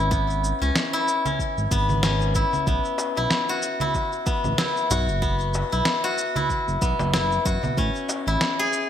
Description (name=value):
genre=organic downtempo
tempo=94 BPM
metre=4/4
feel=swing 57% on 16ths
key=unclear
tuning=A4 = 437 Hz
part: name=steel-string zither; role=arpeggios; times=0.0-8.9 s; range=B3 to G#4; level=-23 LUFS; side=left 2 dB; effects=digital delay
part: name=smooth synth bass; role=bass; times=0.0-8.4 s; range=F#1 to C#2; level=-25 LUFS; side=right 1 dB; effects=tube saturation
part: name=electronic kick drum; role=drums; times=0.1-7.9 s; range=none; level=-26 LUFS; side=right 1 dB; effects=none
part: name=electronic shaker, snare drum and congas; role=drums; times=0.1-8.9 s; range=none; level=-27 LUFS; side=right 2 dB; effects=overdrive, gated reverb
part: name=darbuka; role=percussion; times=3.0-8.7 s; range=none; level=-36 LUFS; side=left 2 dB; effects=none
room=moderate plate reverb, RT60 2.2 s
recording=bright 1980s-style digital production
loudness=-21 LUFS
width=side -9 dB against mid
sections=0.0-8.9 A section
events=none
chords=0.0 C#m7; 2.7 Bsus4; 7.8 Amaj7